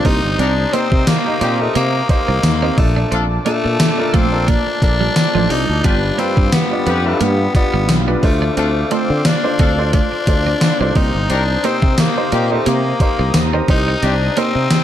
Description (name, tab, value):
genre	1980s-style pop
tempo	88 BPM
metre	4/4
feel	swing 55% on 16ths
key	C dorian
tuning	A4 = 440 Hz
part	raspy tenor saxophone	melody	0.0-14.8 s	A3 to Eb4	-20 LUFS	left 3 dB	digital delay
part	clear baby grand piano	accompaniment	0.0-14.8 s	G2 to Eb5	-22 LUFS	right 1 dB	none
part	sweeping resonant pad	sustained chords	0.0-14.8 s	G4 to Eb6	-27 LUFS	left 2 dB	chorus
part	gated 80s digital drum machine	drums	0.0-14.8 s	hi-hat, kick drum, snare drum, tambourine	-16 LUFS	equal	gated reverb, gated reverb snare, overdrive
part	twelve-string electric guitar	riff	0.1-14.6 s	F3 to Eb4	-24 LUFS	right 6 dB	lush chorus, digital delay
part	sustaining fretless electric bass	bass	0.1-14.7 s	G1 to D3	-18 LUFS	equal	none
part	clear horn section	stabs	0.4-14.1 s	C4 to B4	-26 LUFS	left 3 dB	none
room	light reverb, digital ambience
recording	dark, warm production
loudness	-13 LUFS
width	side -11 dB against mid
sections	0.0-14.8 A section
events	none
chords	0.0 Cm7; 2.8 Bbmaj7; 5.8 G7; 8.2 Dm7; 11.0 Cm7